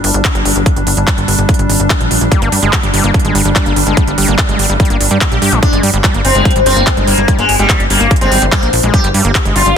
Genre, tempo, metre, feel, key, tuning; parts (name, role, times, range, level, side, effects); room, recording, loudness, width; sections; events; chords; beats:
psychedelic trance; 145 BPM; 4/4; straight; G phrygian; A4 = 440 Hz
evolving wavetable pad; sustained chords; 0.0-9.8 s; G3 to D4; -18 LUFS; equal; chorus, built-in reverb, sidechain pumping
plucky analog bass; bass; 0.0-9.7 s; G1 to G2; -15 LUFS; equal
techno drum kit; drums; 0.0-9.7 s; handclaps, hi-hat; -16 LUFS; right 2 dB
electronic kick drum; drums; 0.2-9.4 s; -14 LUFS; equal
overdriven acid bass; riff; 2.3-9.7 s; G3 to G4; -18 LUFS; moving between left 3 dB and right 4 dB; distortion, auto-pan, sidechain pumping, tape echo
sitar; melody; 5.6-9.8 s; G3 to G4; -13 LUFS; left 2 dB; phaser, sidechain pumping, digital delay
light reverb; dense, heavily limited modern master; -9 LUFS; side -7 dB against mid
0.0-9.8 A section
0.0 G5
0.25 | 0.66 1.07 1.49 1.90 | 2.32 2.73 3.14 3.56 | 3.97 4.38 4.80 5.21 | 5.63 6.04 6.45 6.87 | 7.28 7.70 8.11 8.52 | 8.94 9.35 9.76